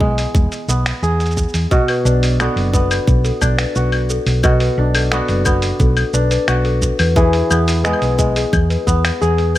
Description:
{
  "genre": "folktronica",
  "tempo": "88 BPM",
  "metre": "4/4",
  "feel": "straight",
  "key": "B dorian",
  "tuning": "A4 = 441 Hz",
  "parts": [
    { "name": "kora", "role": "arpeggios", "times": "0.0-9.6 s", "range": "B2 to G#4", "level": "-20 LUFS", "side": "right 1 dB", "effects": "tape echo" },
    { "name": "hollow-body short-scale fingered electric bass", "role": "bass", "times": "0.0-9.6 s", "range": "E1 to E2", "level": "-17 LUFS", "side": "equal", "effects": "none" },
    { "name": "electronic kick drum", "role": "drums", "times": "0.0-9.0 s", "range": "none", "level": "-16 LUFS", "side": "equal", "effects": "small room reverb" },
    { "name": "lo-fi sampler-style drum kit", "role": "drums", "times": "0.2-9.6 s", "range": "claves, finger snaps, hi-hat, shaker", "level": "-22 LUFS", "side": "left 2 dB", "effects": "small room reverb" },
    { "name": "celesta", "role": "second line", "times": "1.9-9.6 s", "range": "G#4 to B4", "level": "-22 LUFS", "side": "left 6 dB", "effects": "ping-pong delay" }
  ],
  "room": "little or no reverb",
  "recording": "none",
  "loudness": "-13 LUFS",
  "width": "side -14 dB against mid",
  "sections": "0.0-9.6 A section",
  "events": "none",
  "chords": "0.0 E; 1.7 Bm; 7.2 E"
}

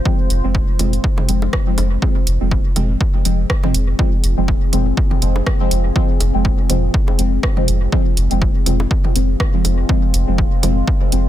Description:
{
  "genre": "dub techno",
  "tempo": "122 BPM",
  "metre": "4/4",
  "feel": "swing 56% on 16ths",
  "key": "F minor",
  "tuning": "A4 = 439 Hz",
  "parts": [
    { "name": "deep dark ambient pad", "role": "sustained chords", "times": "0.0-11.3 s", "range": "Ab3 to C5", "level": "-28 LUFS", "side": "left 2 dB", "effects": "chorus, built-in reverb, sidechain pumping" },
    { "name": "deep mellow chord stab", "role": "stabs", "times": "0.1-11.2 s", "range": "F3 to C4", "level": "-22 LUFS", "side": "equal", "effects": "chorus, phaser, dub echo" },
    { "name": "electronic kick drum", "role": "drums", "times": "0.1-11.0 s", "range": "none", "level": "-17 LUFS", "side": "equal", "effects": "overdrive" },
    { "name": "soft dub sub bass", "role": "bass", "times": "0.3-11.3 s", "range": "F1", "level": "-18 LUFS", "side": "equal", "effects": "sidechain pumping" },
    { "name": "punchy analog drum machine", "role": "drums", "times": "0.3-11.2 s", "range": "hi-hat, rim click", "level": "-25 LUFS", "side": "right 2 dB", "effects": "overdrive, dub echo" },
    { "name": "electronic toms and bongos", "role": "percussion", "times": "0.8-10.7 s", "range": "none", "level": "-30 LUFS", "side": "right 3 dB", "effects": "sidechain pumping on toms, sidechain pumping on perc, dub echo" }
  ],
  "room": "little or no reverb",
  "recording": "dense, heavily limited modern master",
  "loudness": "-14 LUFS",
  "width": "side -12 dB against mid",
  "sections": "0.0-2.0 A section; 2.0-11.3 A section",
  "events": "none",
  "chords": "0.0 Fm"
}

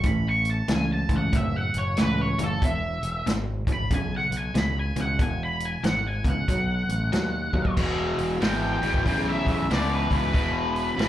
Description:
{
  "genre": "blues rock power trio and southern rock",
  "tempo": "93 BPM",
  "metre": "4/4",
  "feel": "swing 63% on 8ths",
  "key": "E major",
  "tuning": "A4 = 440 Hz",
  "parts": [
    { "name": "octave-fuzz lead guitar", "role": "melody", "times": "0.0-11.1 s", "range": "A4 to C#6", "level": "-29 LUFS", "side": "equal", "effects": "wah, distortion, slapback echo" },
    { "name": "raw garage guitar", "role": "riff", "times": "0.0-11.1 s", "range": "E2 to F#3", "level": "-28 LUFS", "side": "left 1 dB", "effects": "overdrive, slapback echo" },
    { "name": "growling fingered electric bass", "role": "bass", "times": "0.0-11.1 s", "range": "E1 to D#2", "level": "-28 LUFS", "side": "equal", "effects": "overdrive" },
    { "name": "vintage drum kit", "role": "drums", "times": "0.0-11.1 s", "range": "crash cymbal, hi-hat, kick drum, snare drum", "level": "-27 LUFS", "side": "equal", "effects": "none" },
    { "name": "tonewheel organ", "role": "sustained chords", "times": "7.8-11.1 s", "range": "B3 to C#5", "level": "-39 LUFS", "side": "right 2 dB", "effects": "none" }
  ],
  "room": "light reverb",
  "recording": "live gig heard through the venue's PA, club reverb",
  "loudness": "-22 LUFS",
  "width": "side -12 dB against mid",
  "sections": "0.0-7.8 A section; 7.8-11.1 B section",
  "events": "drum fill 7.5-7.8; lead electric guitar solo 7.8-11.1",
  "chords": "0.0 A; 2.6 E; 6.5 B; 7.8 E"
}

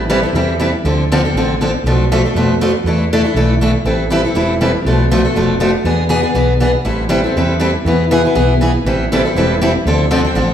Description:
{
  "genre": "acoustic string swing (jazz manouche)",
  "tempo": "240 BPM",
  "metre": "4/4",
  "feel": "swing 55% on 8ths",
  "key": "A minor",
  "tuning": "A4 = 440 Hz",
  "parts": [
    { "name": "picked steel-string acoustic guitar", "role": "accompaniment", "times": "0.0-10.5 s", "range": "B2 to A4", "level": "-13 LUFS", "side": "left 1 dB", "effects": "none" },
    { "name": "woody fretless electric bass", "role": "bass", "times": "0.0-10.5 s", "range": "E1 to F2", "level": "-17 LUFS", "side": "right 1 dB", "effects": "none" }
  ],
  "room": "wet recital hall reverb, RT60 1.7 s",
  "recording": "recorded in a church or concert hall",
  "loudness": "-12 LUFS",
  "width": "side -9 dB against mid",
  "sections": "0.0-7.9 A section; 7.9-10.5 B section",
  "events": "none",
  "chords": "0.0 Am7; 0.8 Dm7; 1.8 Bm7b5; 2.8 E7sus4; 3.9 Am7; 4.9 Bm7b5; 5.9 E7; 6.9 Am7; 7.9 E; 8.9 Am7; 9.9 Dm7"
}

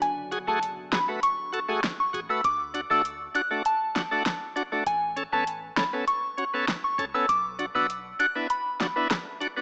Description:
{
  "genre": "dancehall",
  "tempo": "99 BPM",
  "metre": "4/4",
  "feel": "straight",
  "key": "F# minor",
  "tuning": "A4 = 439 Hz",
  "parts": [
    { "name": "soft synth bell", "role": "melody", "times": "0.0-8.9 s", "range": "G#5 to F#6", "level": "-29 LUFS", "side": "equal", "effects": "chorus" },
    { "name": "warm 808-style bass", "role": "bass", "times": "0.0-8.1 s", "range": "F#1 to D2", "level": "-50 LUFS", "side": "equal", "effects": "none" },
    { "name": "deep house drum kit", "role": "drums", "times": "0.0-9.6 s", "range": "hi-hat, rim click, snare drum", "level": "-32 LUFS", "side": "equal", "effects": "vintage 12-bit sampler grit, cassette tape" },
    { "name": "bright tonewheel organ", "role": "accompaniment", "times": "0.3-9.6 s", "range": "A3 to B4", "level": "-32 LUFS", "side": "equal", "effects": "overdrive, slow rotary speaker, cassette tape" }
  ],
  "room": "light reverb",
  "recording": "home recording on cassette, small speaker sound",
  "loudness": "-27 LUFS",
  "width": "mono",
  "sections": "0.0-9.6 A section",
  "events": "break 0.0-9.6",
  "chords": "0.0 F#madd9; 2.4 D; 4.9 Aadd9; 7.3 Bm"
}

